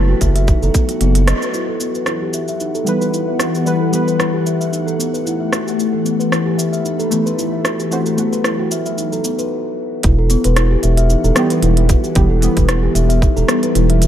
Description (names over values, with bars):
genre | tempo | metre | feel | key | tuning
organic downtempo | 113 BPM | 4/4 | swing 55% on 16ths | E minor | A4 = 440 Hz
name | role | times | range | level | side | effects
deep mellow chord stab | accompaniment | 0.0-14.1 s | E3 to C5 | -22 LUFS | right 1 dB | chorus, sidechain pumping, digital delay
ethereal airy pad | sustained chords | 0.0-14.1 s | E3 to B5 | -22 LUFS | left 2 dB | ensemble chorus, built-in reverb, phaser, sidechain pumping
steel tongue drum | arpeggios | 0.0-14.1 s | B3 to E5 | -20 LUFS | left 1 dB | low-pass filter, digital delay
round analog bass | bass | 0.0-1.3, 10.0-14.1 s | E1 to F#1 | -14 LUFS | equal | none
electronic kick drum | drums | 0.2-0.9, 10.0-13.3 s | none | -15 LUFS | equal | overdrive
organic electronic drum kit | drums | 0.2-14.1 s | hi-hat, rim click, shaker | -22 LUFS | right 1 dB | overdrive
room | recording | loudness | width
light reverb | dark, warm production | -14 LUFS | side -10 dB against mid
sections
0.0-1.5 A section; 1.5-10.0 B section; 10.0-14.1 A section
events
band accent 1.3; filter sweep on steel tongue drum 1.5-10.0; stop 9.5-10.0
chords
0.0 F#m; 1.5 Em; 7.9 F#dim; 10.0 Em